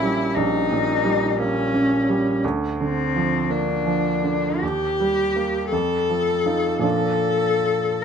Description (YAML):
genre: classical, romantic duo for cello and grand piano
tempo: 51-59 BPM (dotted quarters)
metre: 12/8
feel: rubato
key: Bb major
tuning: A4 = 438 Hz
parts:
  - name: rich cello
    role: melody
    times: 0.0-8.0 s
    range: C4 to A4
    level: -22 LUFS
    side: left 4 dB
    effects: none
  - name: clear baby grand piano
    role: accompaniment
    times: 0.0-8.0 s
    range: Bb1 to F4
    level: -22 LUFS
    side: right 3 dB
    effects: none
room: moderate stone room reverb, RT60 1.2 s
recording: nothing above 10.5 kHz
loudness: -19 LUFS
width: side -7 dB against mid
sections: 0.0-8.0 A section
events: none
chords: 0.0 Bbm6; 2.4 Bb/D; 4.6 Eb; 5.7 F7; 6.8 Bb